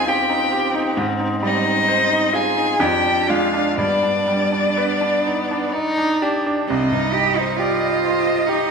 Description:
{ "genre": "classical, slow romantic movement for piano quartet", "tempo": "60-68 BPM", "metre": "3/4", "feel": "rubato", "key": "C minor", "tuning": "A4 = 441 Hz", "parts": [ { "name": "rich violin", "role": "melody", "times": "0.0-8.7 s", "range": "C5 to Ab5", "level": "-22 LUFS", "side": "left 5 dB", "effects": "none" }, { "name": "rich cello", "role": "second line", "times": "0.0-8.7 s", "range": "C4 to Ab4", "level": "-22 LUFS", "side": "right 6 dB", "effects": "none" }, { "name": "warm violin", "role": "second line", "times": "0.0-8.7 s", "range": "B3 to Eb5", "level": "-25 LUFS", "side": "equal", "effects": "none" }, { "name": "bright concert grand piano", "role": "accompaniment", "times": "0.0-8.7 s", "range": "C2 to C6", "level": "-22 LUFS", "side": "equal", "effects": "none" } ], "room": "wet scoring stage reverb, RT60 1.7 s", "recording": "minimal, uncompressed stereo recording", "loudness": "-16 LUFS", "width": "side -5 dB against mid", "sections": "0.0-6.7 A section; 6.7-8.7 B section", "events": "none", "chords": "0.0 Cm/Eb; 1.0 Abmaj7; 2.8 Ddim/F; 3.8 G; 6.7 Cm" }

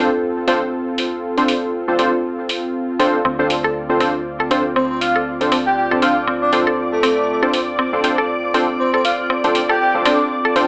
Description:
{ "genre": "deep house", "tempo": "119 BPM", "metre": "4/4", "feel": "swing 57% on 16ths", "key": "D minor", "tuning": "A4 = 438 Hz", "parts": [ { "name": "warm analog pad", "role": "sustained chords", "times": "0.0-10.7 s", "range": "C4 to D5", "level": "-26 LUFS", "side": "equal", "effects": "chorus" }, { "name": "warm analog keys", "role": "stabs", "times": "0.0-10.7 s", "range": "C4 to C5", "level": "-21 LUFS", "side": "equal", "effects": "chorus, digital delay" }, { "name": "fingered electric bass", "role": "bass", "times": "0.0-10.7 s", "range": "D2", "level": "-42 LUFS", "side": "equal", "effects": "none" }, { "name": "electronic hi-hat", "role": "drums", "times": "0.5-10.7 s", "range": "none", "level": "-26 LUFS", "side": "equal", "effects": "low-pass filter on hats" }, { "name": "mallet-like synth pluck", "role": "arpeggios", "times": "3.2-10.5 s", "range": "C4 to A4", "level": "-24 LUFS", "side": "equal", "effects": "chorus, dub echo" }, { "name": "soft string machine", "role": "texture", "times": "4.1-10.7 s", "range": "D5 to D6", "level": "-28 LUFS", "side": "equal", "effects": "ensemble chorus" }, { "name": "airy dreamy lead", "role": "melody", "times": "4.8-10.2 s", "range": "A4 to G5", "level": "-22 LUFS", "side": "equal", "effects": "chorus, dub echo" } ], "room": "moderate digital room reverb, RT60 1.2 s", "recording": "AM radio sound", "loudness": "-18 LUFS", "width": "mono", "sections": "0.0-10.7 A section", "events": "none", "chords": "0.0 Dm7" }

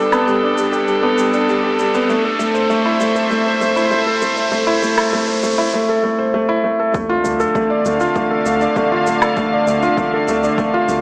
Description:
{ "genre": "piano and strings electronica", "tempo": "99 BPM", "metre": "4/4", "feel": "straight", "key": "unclear", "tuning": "A4 = 444 Hz", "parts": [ { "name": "dark studio string section", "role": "sustained chords", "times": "0.0-11.0 s", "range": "D3 to F5", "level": "-18 LUFS", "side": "equal", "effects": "none" }, { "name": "felt-muted upright piano", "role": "riff", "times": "0.0-11.0 s", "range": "G3 to D5", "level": "-16 LUFS", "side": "equal", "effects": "tape echo" }, { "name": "riser and sub drop", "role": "sound effects", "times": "0.0-9.4 s", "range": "none", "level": "-26 LUFS", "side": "equal", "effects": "none" }, { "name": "shaker and woodblock", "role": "drums", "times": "0.1-11.0 s", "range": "none", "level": "-24 LUFS", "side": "equal", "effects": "overdrive" }, { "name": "electronic kick drum", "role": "drums", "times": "6.9-10.7 s", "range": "none", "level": "-26 LUFS", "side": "equal", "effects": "none" }, { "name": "round analog bass", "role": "bass", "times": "7.3-11.0 s", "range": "D1 to D2", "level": "-27 LUFS", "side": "equal", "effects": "sidechain pumping" } ], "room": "wet echo chamber reverb, RT60 1.5 s, digital ambience", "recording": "small speaker sound", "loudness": "-14 LUFS", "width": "side -30 dB against mid", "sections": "0.0-6.9 A section; 6.9-11.0 B section", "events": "build-up 0.0-6.9; riser 0.0-5.7; drop 6.9-11.0; impact 6.9-9.4", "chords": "0.0 Gadd9; 2.1 Am; 6.9 Dm" }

